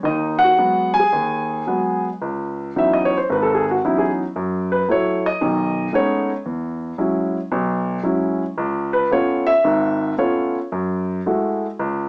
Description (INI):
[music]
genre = solo jazz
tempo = 113 BPM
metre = 4/4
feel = swing 69% on 8ths, rubato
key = C# minor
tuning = A4 = 440 Hz
[part]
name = warm grand piano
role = solo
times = 0.0-12.1 s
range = G#1 to G#5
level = -20 LUFS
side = equal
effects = none
[sound]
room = moderate studio ambience, RT60 0.5 s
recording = heard from further back in the room, small speaker sound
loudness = -20 LUFS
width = mono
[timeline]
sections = 0.0-2.2 A section; 2.2-12.1 B section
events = grand piano solo 2.2-12.1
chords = 0.0 G#m7; 2.2 C#m11; 4.4 F#m7; 5.4 B13; 6.5 E69; 8.6 C#7b13; 10.7 F#m9